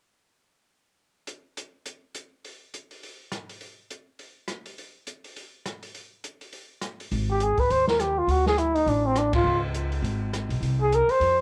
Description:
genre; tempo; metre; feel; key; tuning
jazz, small-group swing and bop; 205 BPM; 4/4; swing 59% on 8ths; unclear; A4 = 440 Hz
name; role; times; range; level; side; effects
open jazz drum kit; drums; 1.3-11.3 s; hi-hat, kick drum, ride cymbal, rim click, snare drum; -36 LUFS; equal; none
upright bass; bass; 7.1-11.4 s; Ab1 to F2; -30 LUFS; equal; none
trumpet with bucket mute; melody; 7.3-11.4 s; C4 to C5; -24 LUFS; equal; cassette tape, plate reverb
room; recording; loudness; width
moderate small room reverb, RT60 0.6 s; home recording on cassette; -24 LUFS; mono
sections
1.3-2.4 A section; 2.4-7.1 B section; 7.1-11.4 C section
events
band accent 9.3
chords
1.3 N.C.; 7.1 Ab5; 8.3 D5; 9.5 Db5; 10.6 Abadd9/C

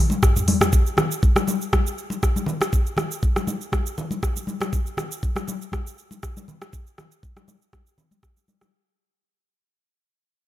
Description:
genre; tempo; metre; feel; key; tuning
house; 120 BPM; 4/4; swing 54% on 16ths; none; none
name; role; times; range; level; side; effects
afro-pop drum kit; drums; 0.1-8.7 s; cabasa, hi-hat, rim click, toms; -25 LUFS; equal; studio reverb
congas; percussion; 0.1-8.7 s; none; -27 LUFS; left 2 dB; none
electronic kick drum; drums; 0.2-8.3 s; none; -20 LUFS; equal; studio reverb
room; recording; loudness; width
digital ambience; none; -21 LUFS; side -14 dB against mid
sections
0.7-8.7 A section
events
drum fill 0.0-0.7; fade-out 0.7-8.7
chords
none

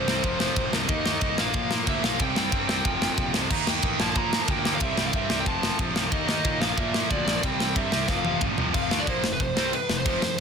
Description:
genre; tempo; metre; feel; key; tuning
punk rock; 183 BPM; 4/4; straight; unclear; A4 = 440 Hz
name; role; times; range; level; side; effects
biting lead guitar; melody; 0.0-10.4 s; B4 to Bb5; -30 LUFS; equal; overdrive, ping-pong delay
crunchy overdriven guitar; riff; 0.0-10.4 s; F2 to Eb4; -34 LUFS; equal; none
distorted electric guitar; riff; 0.0-10.4 s; F2 to Eb4; -30 LUFS; right 16 dB; overdrive
tight distorted guitar; riff; 0.0-10.4 s; F2 to Eb4; -31 LUFS; left 16 dB; distortion
fuzz picked electric bass; bass; 0.0-10.4 s; F1 to Bb2; -33 LUFS; equal; overdrive
tight metal drum kit; drums; 0.1-10.3 s; crash cymbal, kick drum, ride cymbal, snare drum, toms; -26 LUFS; equal; none
room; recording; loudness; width
light reverb; dense, heavily limited modern master; -22 LUFS; side -6 dB against mid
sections
0.0-8.7 A section; 8.7-10.4 B section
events
drum fill 8.1-8.7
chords
0.2 F5; 0.9 Eb5; 1.4 Bb; 2.2 C5; 2.9 F5; 3.5 Eb; 4.0 Bb; 4.8 C5; 5.5 F; 6.1 Eb5; 6.6 Bb; 7.4 C; 8.1 F5; 8.7 F

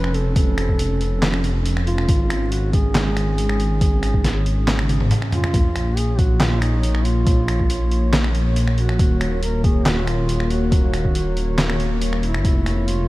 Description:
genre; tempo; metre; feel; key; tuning
deep dubstep; 139 BPM; 4/4; half-time; unclear; A4 = 436 Hz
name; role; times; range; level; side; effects
dark duduk; melody; 0.0-13.1 s; Eb4 to Cb5; -27 LUFS; right 1 dB; dub echo
dark analog pad; sustained chords; 0.0-13.1 s; Bb3 to Db5; -28 LUFS; equal; chorus
dark detuned saw bass; bass; 0.0-13.1 s; Eb1 to Bb1; -20 LUFS; equal; none
trip hop sampler-style drum kit; drums; 0.0-13.0 s; finger snaps, handclaps, hi-hat, snare drum, toms; -24 LUFS; equal; none
electronic kick drum; drums; 0.4-12.5 s; none; -18 LUFS; equal; overdrive
room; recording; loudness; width
little or no reverb; vinyl crackle; -17 LUFS; side -18 dB against mid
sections
0.0-13.1 A section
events
drum fill 4.7-5.5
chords
0.0 F; 2.1 Absus4; 5.5 Bbm; 9.0 Ebm; 12.4 N.C.

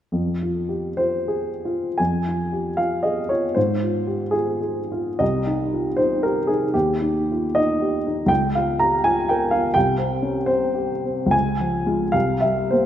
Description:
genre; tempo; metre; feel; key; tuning
classical, romantic character piece for solo piano; 52-88 BPM (dotted quarters); 6/8; rubato; F minor; A4 = 438 Hz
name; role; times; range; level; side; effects
dark baby grand piano; solo; 0.1-12.9 s; C2 to Bb5; -19 LUFS; equal; none
room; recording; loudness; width
moderate scoring stage reverb, RT60 1.8 s; none; -19 LUFS; side -10 dB against mid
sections
0.1-2.0 A section; 2.0-12.9 B section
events
none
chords
0.1 Fm; 3.6 Fm/Ab; 5.2 Cm; 6.7 Ebadd9; 8.3 Bbm/Db; 9.8 C5; 11.3 Db; 12.1 C5

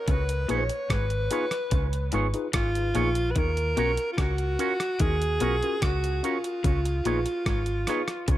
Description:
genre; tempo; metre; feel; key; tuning
lovers rock reggae; 73 BPM; 4/4; straight; unclear; A4 = 440 Hz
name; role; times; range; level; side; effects
breathy alto saxophone; melody; 0.0-8.4 s; F4 to Db5; -29 LUFS; equal; tape echo
electric guitar through a small old amp; riff; 0.1-8.4 s; Ab2 to Eb3; -36 LUFS; left 7 dB; none
vintage muted fingered electric bass; bass; 0.1-8.4 s; Ab1 to Eb2; -28 LUFS; equal; none
crisp 8-bit digital drum machine; drums; 0.1-8.4 s; hi-hat, kick drum, rim click; -28 LUFS; equal; none
tine electric piano; accompaniment; 0.5-8.0 s; Db4 to Cb5; -34 LUFS; left 3 dB; medium stereo tremolo, dub echo
electric guitar with an envelope filter; stabs; 0.5-8.0 s; Cb4 to Db5; -34 LUFS; right 6 dB; dub echo
room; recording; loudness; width
light reverb; none; -24 LUFS; side -14 dB against mid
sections
0.0-8.4 A section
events
none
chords
0.1 Db7; 3.4 Ebm7; 6.6 Db7

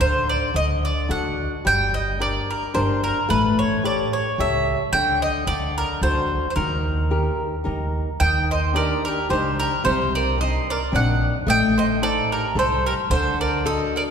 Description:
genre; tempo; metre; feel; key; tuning
italian folk, Italian serenade; 110 BPM; 3/4; swing 53% on 8ths; unclear; A4 = 439 Hz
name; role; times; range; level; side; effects
bowl-back mandolin; melody; 0.0-14.0 s; Bb4 to G5; -22 LUFS; right 1 dB; none
flamenco guitar; accompaniment; 0.0-14.1 s; C3 to C#5; -25 LUFS; left 3 dB; none
upright bass; bass; 0.0-13.8 s; G1 to Eb2; -24 LUFS; right 1 dB; none
bowl-back mandolin; second line; 8.2-14.0 s; G4 to Eb5; -28 LUFS; right 5 dB; none
room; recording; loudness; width
wet church reverb, RT60 2.6 s; recorded in a church or concert hall; -19 LUFS; side -7 dB against mid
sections
0.0-14.1 A section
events
none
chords
0.0 Csus2/D; 0.5 D; 1.7 Gm; 3.3 A7; 4.9 Dsus4; 5.5 D; 6.6 Eb; 8.2 Ebmaj7; 9.8 Cmadd9; 11.5 Adim; 13.1 D

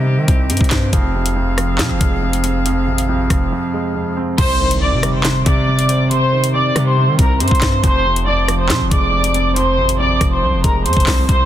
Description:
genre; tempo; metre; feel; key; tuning
hip hop, drill; 139 BPM; 4/4; half-time; unclear; A4 = 440 Hz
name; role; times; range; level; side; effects
dark baby grand piano; accompaniment; 0.0-11.5 s; F2 to C5; -21 LUFS; right 2 dB; low-pass filter
bright woodwind section; sustained chords; 0.0-4.3, 11.3-11.5 s; C3 to F5; -25 LUFS; left 1 dB; none
hard-hitting 808-style bass; bass; 0.0-11.5 s; F1 to Eb3; -18 LUFS; equal; none
drill drum kit; drums; 0.3-11.4 s; crash cymbal, handclaps, hi-hat, kick drum, rim click, snare drum; -17 LUFS; equal; none
dark studio violin section; melody; 4.4-11.5 s; Bb4 to D6; -17 LUFS; equal; low-pass filter, ping-pong delay
impact; sound effects; 4.4-6.1 s; none; -25 LUFS; equal; none
room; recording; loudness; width
small room ambience; dense, heavily limited modern master; -13 LUFS; side -11 dB against mid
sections
0.0-4.4 A section; 4.4-11.5 B section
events
break 3.5-4.4; impact 4.4-6.1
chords
0.0 Cm; 0.9 Fm; 4.4 Cm; 7.8 Fm

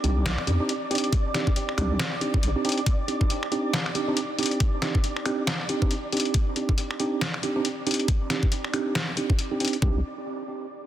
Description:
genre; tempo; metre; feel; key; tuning
deep dubstep; 138 BPM; 4/4; swing 59% on 16ths, half-time; C minor; A4 = 441 Hz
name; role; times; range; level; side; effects
mellow tine electric piano; stabs; 0.0-10.0 s; C4 to G4; -28 LUFS; right 3 dB; medium stereo tremolo, low-pass filter, dub echo
deep soft wobble bass; bass; 0.0-2.5, 9.8-10.0 s; Bb1 to F2; -24 LUFS; equal; chorus, tube saturation
trip hop sampler-style drum kit; drums; 0.0-9.8 s; finger snaps, hi-hat, snare drum; -29 LUFS; left 2 dB; none
flickering grainy texture; texture; 0.0-9.8 s; D5; -35 LUFS; right 1 dB; built-in reverb
electronic kick drum; drums; 1.1-9.9 s; none; -23 LUFS; equal; overdrive
room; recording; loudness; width
light reverb, digital ambience; dense, heavily limited modern master; -23 LUFS; side -12 dB against mid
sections
0.0-9.8 A section; 9.8-10.9 B section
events
filter sweep on tine electric piano 0.0-9.8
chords
0.0 Cmadd9

